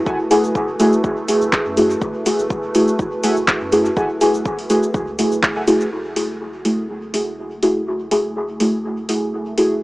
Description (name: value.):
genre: dub techno.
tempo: 123 BPM.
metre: 4/4.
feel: swing 54% on 16ths.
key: F# minor.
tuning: A4 = 440 Hz.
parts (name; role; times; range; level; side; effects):
dark analog pad; sustained chords; 0.0-9.8 s; A3 to B4; -28 LUFS; equal; chorus, sidechain pumping.
bubbling stepped-filter texture; texture; 0.0-9.8 s; A3; -31 LUFS; right 1 dB; chorus, built-in reverb, sidechain pumping.
warbly lo-fi synth keys; riff; 0.1-0.2, 3.2-5.6 s; A4 to G#5; -30 LUFS; equal; chorus, sidechain pumping, dub echo.
soft dub sub bass; bass; 0.1-9.8 s; F#1 to F#2; -39 LUFS; equal; sidechain pumping.
deep house drum kit; drums; 0.1-9.7 s; cabasa, handclaps, hi-hat; -23 LUFS; equal; none.
electronic kick drum; drums; 0.1-5.5 s; none; -25 LUFS; equal; none.
deep mellow chord stab; stabs; 0.3-9.8 s; A3 to G#4; -17 LUFS; equal; chorus, phaser, sidechain pumping, dub echo.
room: light reverb, digital ambience.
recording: dry, gritty hardware recording, small speaker sound.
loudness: -16 LUFS.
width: side -19 dB against mid.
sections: 0.0-5.9 A section; 5.9-9.8 B section.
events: band accent 5.4.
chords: 0.0 F#m9.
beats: | 0.07 0.55 1.04 1.53 | 2.02 2.50 2.99 3.48 | 3.97 4.46 4.94 5.43 | 5.92 6.41 6.89 7.38 | 7.87 8.36 8.85 9.33 | 9.82.